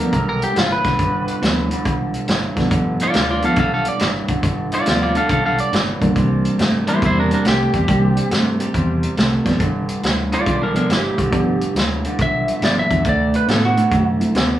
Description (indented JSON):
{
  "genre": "electric blues shuffle",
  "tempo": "139 BPM",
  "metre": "4/4",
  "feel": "swing 67% on 8ths",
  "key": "G mixolydian",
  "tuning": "A4 = 439 Hz",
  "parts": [
    { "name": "lightly driven lead guitar", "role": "melody", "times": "0.0-14.1 s", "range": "D4 to F5", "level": "-20 LUFS", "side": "equal", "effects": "none" },
    { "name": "bright reed electric piano", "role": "accompaniment", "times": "0.0-14.3 s", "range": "E3 to E4", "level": "-21 LUFS", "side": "right 2 dB", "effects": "fast tremolo" },
    { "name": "electric guitar through a small old amp", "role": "riff", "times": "0.0-14.6 s", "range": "G2 to B3", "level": "-22 LUFS", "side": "equal", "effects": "spring reverb" },
    { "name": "fingered electric bass", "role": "bass", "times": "0.1-14.5 s", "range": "F#1 to A2", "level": "-24 LUFS", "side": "equal", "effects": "none" },
    { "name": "vintage drum kit", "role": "drums", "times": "0.1-14.5 s", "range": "hi-hat, kick drum, snare drum", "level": "-21 LUFS", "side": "equal", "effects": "none" }
  ],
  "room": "moderate large studio reverb, RT60 0.9 s",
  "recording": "band playing live in one room, small room reverb",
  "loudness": "-15 LUFS",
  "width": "side -12 dB against mid",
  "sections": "0.0-14.6 A section",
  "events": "none",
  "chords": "0.0 G9; 6.2 C9; 9.6 G9; 13.0 D"
}